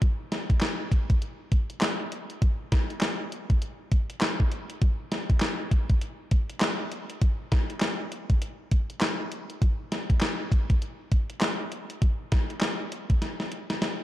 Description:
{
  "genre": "R&B",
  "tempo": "100 BPM",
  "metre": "4/4",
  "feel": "swing 60% on 16ths",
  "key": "none",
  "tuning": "none",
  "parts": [
    { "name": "gated 80s digital drum machine", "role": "drums", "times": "0.0-14.0 s", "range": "handclaps, hi-hat, kick drum, snare drum", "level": "-24 LUFS", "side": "equal", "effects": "gated reverb, gated reverb snare" }
  ],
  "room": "little or no reverb",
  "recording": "dark, warm production",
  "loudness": "-25 LUFS",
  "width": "side -14 dB against mid",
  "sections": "0.0-14.0 A section",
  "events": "drum fill 13.2-14.0",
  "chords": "none"
}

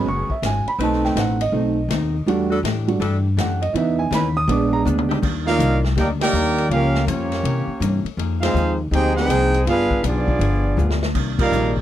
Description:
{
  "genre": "jazz, big band swing",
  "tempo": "162 BPM",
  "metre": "4/4",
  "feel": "swing 64% on 8ths",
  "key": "Eb major from 5.2 s",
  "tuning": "A4 = 437 Hz",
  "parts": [
    { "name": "hollow-body jazz guitar", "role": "accompaniment", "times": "0.0-11.8 s", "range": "G2 to Ab4", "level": "-29 LUFS", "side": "left 8 dB", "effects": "none" },
    { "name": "warm grand piano", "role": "accompaniment", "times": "0.0-5.2 s", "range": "E3 to D#6", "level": "-21 LUFS", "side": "right 4 dB", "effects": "none" },
    { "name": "clear saxophone section", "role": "sustained chords", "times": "0.0-5.2 s", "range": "E3 to B4", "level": "-27 LUFS", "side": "left 3 dB", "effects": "none" },
    { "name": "upright bass", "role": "bass", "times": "0.0-11.8 s", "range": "F#1 to C3", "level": "-22 LUFS", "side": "left 1 dB", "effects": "none" },
    { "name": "swinging big-band drum kit", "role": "drums", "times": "0.3-11.8 s", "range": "crash cymbal, hi-hat, kick drum, ride cymbal, snare drum, toms", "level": "-27 LUFS", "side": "left 2 dB", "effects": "none" },
    { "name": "warm trumpet section", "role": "melody", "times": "5.5-11.7 s", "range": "Bb3 to G5", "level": "-22 LUFS", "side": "right 1 dB", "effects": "none" },
    { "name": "clear trombone section", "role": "second line", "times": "5.5-11.7 s", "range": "F3 to Ab4", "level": "-23 LUFS", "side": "right 3 dB", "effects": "none" }
  ],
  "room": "little or no reverb",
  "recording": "none",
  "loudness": "-17 LUFS",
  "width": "side -12 dB against mid",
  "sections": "0.0-5.2 A section; 5.2-11.8 B section",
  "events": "grand piano solo 0.0-5.2; drum fill 4.9-5.2, 10.8-11.1; band accent 6.1, 8.4, 11.3",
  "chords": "0.0 Amaj13; 0.8 B7b9; 2.3 Em11; 3.7 C#m9; 4.5 A#7b9; 5.2 Ebmaj7; 6.7 Gm7b5; 7.4 C7b9; 8.2 Fm11; 9.7 G7b9; 11.1 Cm9"
}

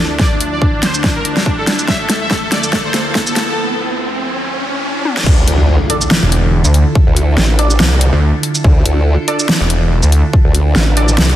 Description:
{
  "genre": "heavy wobble dubstep",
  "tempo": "142 BPM",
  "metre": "4/4",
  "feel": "swing 55% on 16ths, half-time",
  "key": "D minor",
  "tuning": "A4 = 441 Hz",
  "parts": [
    { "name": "soft supersaw", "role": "melody", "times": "0.0-3.5 s", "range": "D4 to E5", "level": "-19 LUFS", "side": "left 1 dB", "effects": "phaser, tape echo" },
    { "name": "evolving wavetable pad", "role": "sustained chords", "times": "0.0-11.4 s", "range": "D2 to A4", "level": "-22 LUFS", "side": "right 2 dB", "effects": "phaser, built-in reverb, sidechain pumping" },
    { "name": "riser and impact", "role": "sound effects", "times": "1.3-7.0 s", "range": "none", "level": "-21 LUFS", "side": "equal", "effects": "none" },
    { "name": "dubstep drum kit", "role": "drums", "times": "0.2-11.4 s", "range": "crash cymbal, hi-hat, shaker, snare drum, toms", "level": "-16 LUFS", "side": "equal", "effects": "overdrive" },
    { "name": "electronic kick drum", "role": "drums", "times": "0.2-10.4 s", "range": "none", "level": "-13 LUFS", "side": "equal", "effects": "none" },
    { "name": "formant-sweep wobble bass", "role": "bass", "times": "5.3-11.4 s", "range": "A1 to D2", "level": "-12 LUFS", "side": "equal", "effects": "chorus, overdrive" },
    { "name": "orchestra-hit-like synth stab", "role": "stabs", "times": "5.9-11.0 s", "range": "D4 to D5", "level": "-22 LUFS", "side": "right 1 dB", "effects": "built-in reverb, tape echo" },
    { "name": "snarling distorted saw bass", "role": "bass", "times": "6.2-10.2 s", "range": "E1 to D2", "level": "-11 LUFS", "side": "equal", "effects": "distortion, overdrive" }
  ],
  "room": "moderate lush hall reverb, RT60 2.2 s",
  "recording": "dense, heavily limited modern master, high-pass filter",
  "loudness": "-11 LUFS",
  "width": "side -12 dB against mid",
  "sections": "0.0-5.3 A section; 5.3-11.4 B section",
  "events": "build-up 0.0-5.3; drum fill 0.0-3.6, 5.1; riser 1.3-5.3; break 3.6-5.3; drop 5.3-11.4; impact 5.3-7.0",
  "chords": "0.0 Dmadd9"
}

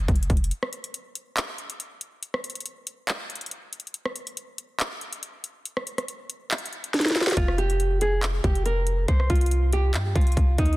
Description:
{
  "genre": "hip hop, trap",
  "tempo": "140 BPM",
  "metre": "4/4",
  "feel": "half-time",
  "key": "F minor",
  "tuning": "A4 = 440 Hz",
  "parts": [
    { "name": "clean 808-style bass", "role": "bass", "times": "0.0-0.5, 7.4-10.8 s", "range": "F1 to G2", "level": "-23 LUFS", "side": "equal", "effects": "none" },
    { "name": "trap drum kit", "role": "drums", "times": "0.1-10.8 s", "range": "handclaps, hi-hat, kick drum, rim click, snare drum", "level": "-25 LUFS", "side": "equal", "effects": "none" },
    { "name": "nylon-string guitar", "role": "melody", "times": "7.4-10.8 s", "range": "Eb4 to C5", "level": "-27 LUFS", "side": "right 2 dB", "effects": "low-pass filter, tape echo" }
  ],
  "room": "little or no reverb",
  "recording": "dense, heavily limited modern master",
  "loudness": "-23 LUFS",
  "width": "side -19 dB against mid",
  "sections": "0.0-10.8 A section",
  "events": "break 0.0-0.5, 0.5-7.4; drum fill 6.9-7.4",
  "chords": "0.0 N.C.; 7.4 Fsus2; 9.1 C5"
}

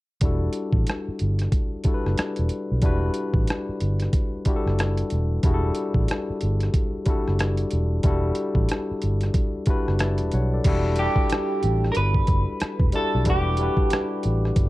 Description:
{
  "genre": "R&B, neo-soul",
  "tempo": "92 BPM",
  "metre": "4/4",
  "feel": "swing 61% on 16ths",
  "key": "E minor",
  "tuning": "A4 = 440 Hz",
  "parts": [
    { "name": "barky tine electric piano", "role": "accompaniment", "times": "0.2-14.7 s", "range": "G3 to A5", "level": "-27 LUFS", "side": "left 2 dB", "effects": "none" },
    { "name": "vintage muted fingered electric bass", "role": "bass", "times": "0.2-14.7 s", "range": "E1 to B1", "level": "-23 LUFS", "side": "equal", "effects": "none" },
    { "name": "boom bap sampler-style drum kit", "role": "drums", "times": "0.2-14.7 s", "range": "crash cymbal, hi-hat, kick drum, rim click", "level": "-23 LUFS", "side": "equal", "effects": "none" },
    { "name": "clean electric guitar", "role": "melody", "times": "11.0-14.7 s", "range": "G4 to B4", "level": "-26 LUFS", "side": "right 3 dB", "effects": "lush chorus" }
  ],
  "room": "little or no reverb",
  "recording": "dark, warm production",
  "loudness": "-21 LUFS",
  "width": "side -18 dB against mid",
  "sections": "0.2-10.6 A section; 10.6-14.7 B section",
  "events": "none",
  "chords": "0.2 Em11"
}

